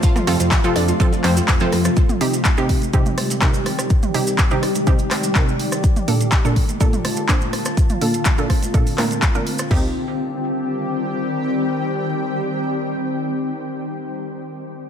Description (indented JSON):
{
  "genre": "progressive house",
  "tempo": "124 BPM",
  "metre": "4/4",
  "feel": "straight",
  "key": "C dorian",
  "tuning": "A4 = 439 Hz",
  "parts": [
    { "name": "shimmering ambient pad", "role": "sustained chords", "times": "0.0-14.0 s", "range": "C3 to A5", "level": "-23 LUFS", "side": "left 1 dB", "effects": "chorus, built-in reverb, sidechain pumping" },
    { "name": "analog pluck", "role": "arpeggios", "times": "0.0-1.9 s", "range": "F3 to F4", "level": "-25 LUFS", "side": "left 1 dB", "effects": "chorus, sidechain pumping, digital delay" },
    { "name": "house drum kit", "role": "drums", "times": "0.0-9.8 s", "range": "crash cymbal, kick drum, toms", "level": "-17 LUFS", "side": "equal", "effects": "none" },
    { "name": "house drum kit", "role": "drums", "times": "0.0-9.7 s", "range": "handclaps, hi-hat, rim click", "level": "-24 LUFS", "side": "equal", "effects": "overdrive" },
    { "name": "jazz brush drum kit", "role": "drums", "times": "0.0-2.0 s", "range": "hi-hat, snare drum", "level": "-34 LUFS", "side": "left 2 dB", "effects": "none" },
    { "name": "maracas", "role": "percussion", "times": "0.0-9.7 s", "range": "none", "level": "-31 LUFS", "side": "right 4 dB", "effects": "none" },
    { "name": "deep house drum kit", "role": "percussion", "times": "0.2-9.4 s", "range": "congas, rim click, toms", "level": "-29 LUFS", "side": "right 3 dB", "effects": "overdrive, sidechain pumping on toms, sidechain pumping on perc, sidechain pumping on snare" },
    { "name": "wide unison pluck", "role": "stabs", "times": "0.3-14.0 s", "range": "Bb2 to C5", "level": "-22 LUFS", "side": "right 3 dB", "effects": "cassette tape, sidechain pumping, digital delay" },
    { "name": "dark detuned saw bass", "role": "bass", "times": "0.3-1.9 s", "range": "F2", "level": "-21 LUFS", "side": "left 1 dB", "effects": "sidechain pumping" }
  ],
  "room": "light reverb",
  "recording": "none",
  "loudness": "-16 LUFS",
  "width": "side -8 dB against mid",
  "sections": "0.0-9.7 A section; 9.7-13.6 B section",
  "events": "filter sweep on synth pluck 0.0-9.7; filter sweep on ambient pad 0.0-9.7",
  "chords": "0.0 F; 2.0 Cm; 5.8 Bbmaj7; 9.7 Cm"
}